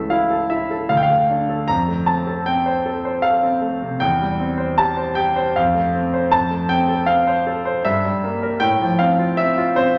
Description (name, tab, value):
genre	classical, romantic character piece for solo piano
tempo	77 BPM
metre	3/4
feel	rubato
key	F major from 6.3 s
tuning	A4 = 438 Hz
part	warm concert grand piano	solo	0.0-10.0 s	C#2 to Bb5	-19 LUFS	equal	none
room	wet recital hall reverb, RT60 1.5 s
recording	none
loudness	-19 LUFS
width	mono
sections	0.0-10.0 A section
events	none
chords	0.0 A/C#; 0.9 Dm; 1.7 F; 4.0 C/E; 5.6 F; 7.9 Edim/G; 8.6 F/A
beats	0.10 0.90 | 1.69 2.47 3.24 | 4.02 4.79 5.57 | 6.33 7.08 7.85 | 8.63 9.40